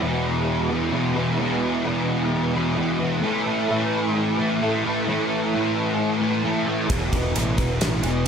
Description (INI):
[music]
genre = rock, shoegaze and dream pop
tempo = 131 BPM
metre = 4/4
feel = straight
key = unclear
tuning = A4 = 440 Hz
[part]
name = fuzz guitar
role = riff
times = 0.0-8.3 s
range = E2 to A3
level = -21 LUFS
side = equal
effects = distortion, ensemble chorus
[part]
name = growling fingered electric bass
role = bass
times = 6.9-8.2 s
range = E1 to A1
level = -25 LUFS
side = equal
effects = overdrive
[part]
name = gated 80s drum kit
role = drums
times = 6.9-8.3 s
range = kick drum, ride cymbal, snare drum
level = -25 LUFS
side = equal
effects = none
[sound]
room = moderate concert hall reverb, RT60 1.9 s, small room ambience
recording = none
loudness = -20 LUFS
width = side -7 dB against mid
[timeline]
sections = 0.0-8.3 A section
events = none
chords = 0.0 E5; 3.2 A5; 6.9 E5